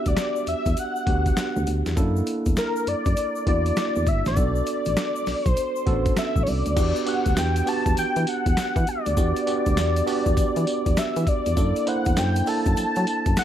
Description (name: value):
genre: R&B, new jack swing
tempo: 100 BPM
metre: 4/4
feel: swing 64% on 16ths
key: E minor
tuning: A4 = 440 Hz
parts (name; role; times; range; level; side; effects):
- wide unison lead; melody; 0.0-13.4 s; A#4 to A5; -26 LUFS; left 2 dB; none
- tine electric piano; accompaniment; 0.0-13.4 s; A#3 to C5; -27 LUFS; right 5 dB; none
- solid FM bass; bass; 0.1-13.4 s; G1 to F#3; -24 LUFS; equal; none
- boom bap sampler-style drum kit; drums; 0.1-13.4 s; crash cymbal, hi-hat, kick drum, snare drum, tambourine; -25 LUFS; equal; none
- egg shaker; percussion; 0.1-13.4 s; none; -43 LUFS; left 14 dB; none
room: light reverb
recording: dark, warm production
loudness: -20 LUFS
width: side -10 dB against mid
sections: 0.0-6.8 A section; 6.8-13.4 B section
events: none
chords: 0.0 Em9; 2.0 F#7alt; 4.4 Bm7; 6.8 Em9; 11.6 F#7alt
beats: 0.17 0.77 1.37 | 1.97 2.57 3.17 3.77 | 4.37 4.97 5.57 6.17 | 6.77 7.37 7.97 8.57 | 9.17 9.77 10.37 10.97 | 11.57 12.17 12.77 13.37